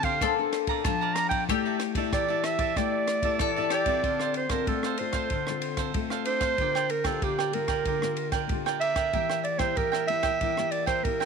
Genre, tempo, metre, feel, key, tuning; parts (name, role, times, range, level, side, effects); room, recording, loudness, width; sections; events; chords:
samba and choro; 94 BPM; 4/4; straight; D minor; A4 = 440 Hz
breathy clarinet; melody; 0.0-11.3 s; G4 to Bb5; -28 LUFS; right 4 dB; tape echo
bowl-back mandolin; second line; 0.0-4.0 s; F4 to A4; -32 LUFS; left 13 dB; tape echo
cavaquinho; accompaniment; 0.0-11.3 s; D4 to Bb5; -33 LUFS; right 15 dB
nylon-string guitar; accompaniment; 0.0-11.3 s; D3 to D5; -32 LUFS; left 14 dB
compact cocktail drum kit; drums; 0.0-11.3 s; kick drum, ride cymbal, rim click; -32 LUFS; right 1 dB
light reverb, small room reverb; 1960s-style stereo with parts hard left and right; -24 LUFS; side -5 dB against mid
0.0-4.0 A section; 4.0-11.3 B section
0.2 Bbmaj9; 1.5 A7sus4; 4.0 Dm7; 6.6 Gm7/D; 9.1 Edim